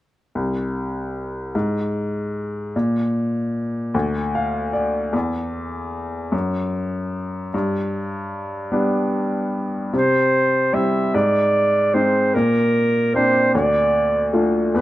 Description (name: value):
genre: folk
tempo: 50 BPM (dotted quarters)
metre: 6/8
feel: straight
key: unclear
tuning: A4 = 440 Hz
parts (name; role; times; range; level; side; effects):
- bright upright piano; accompaniment; 0.4-14.8 s; C2 to F5; -20 LUFS; left 1 dB; plate reverb
- clear clarinet; melody; 9.9-14.8 s; Bb4 to E5; -18 LUFS; right 1 dB; plate reverb
room: wet small room reverb, RT60 0.5 s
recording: rough home demo mix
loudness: -18 LUFS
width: side -15 dB against mid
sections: 0.3-9.9 A section; 9.9-14.8 B section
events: none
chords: 0.3 N.C.; 7.5 G; 9.9 C; 11.1 Ab; 12.3 Bbadd9; 13.5 Dm